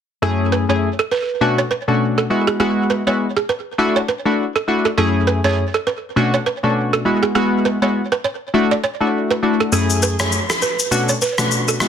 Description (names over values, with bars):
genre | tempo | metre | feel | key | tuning
afrobeats | 101 BPM | 4/4 | swing 58% on 16ths | F# minor | A4 = 439 Hz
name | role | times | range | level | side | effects
warm analog keys | accompaniment | 0.2-11.9 s | F#2 to G#4 | -16 LUFS | left 2 dB | chorus
balafon | riff | 0.2-11.8 s | G#4 to D5 | -20 LUFS | right 5 dB | digital delay
electronic shaker and rim click | drums | 9.7-11.9 s | none | -19 LUFS | left 3 dB | soft clipping on snare
room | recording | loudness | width
moderate studio reverb, RT60 0.6 s | dense, heavily limited modern master | -16 LUFS | side -8 dB against mid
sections
0.2-11.9 A section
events
none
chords
0.2 F#m7; 1.4 Bm7; 2.3 Eadd9; 3.8 Dadd9; 5.0 F#m7; 6.2 Bm7; 7.1 Eadd9; 8.5 Dadd9; 9.7 F#m7; 10.9 Bm7